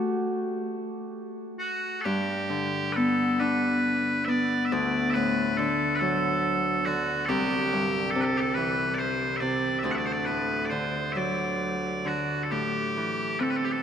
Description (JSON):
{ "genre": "celtic folk, Celtic slow air", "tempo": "46 BPM (dotted quarters)", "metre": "6/8", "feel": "rubato", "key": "G major", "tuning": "A4 = 440 Hz", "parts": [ { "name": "Celtic harp", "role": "accompaniment", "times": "0.0-13.8 s", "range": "C2 to A4", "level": "-27 LUFS", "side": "left 1 dB", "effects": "none" }, { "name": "loud bright bagpipes", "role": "melody", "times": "1.6-13.8 s", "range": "F#4 to F#5", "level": "-27 LUFS", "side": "right 1 dB", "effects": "none" } ], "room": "wet cathedral reverb, RT60 6.3 s", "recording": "in a vast, echoing space", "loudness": "-24 LUFS", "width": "side -8 dB against mid", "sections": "0.0-2.0 A section; 2.0-13.8 B section", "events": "harp solo 0.0-2.0", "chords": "0.0 N.C.; 2.0 G; 4.7 D; 7.3 C; 9.8 D; 12.5 Am", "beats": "0.68 | 2.04 3.39 | 4.71 6.00 | 7.28 8.56 | 9.84 11.14 | 12.50 13.83" }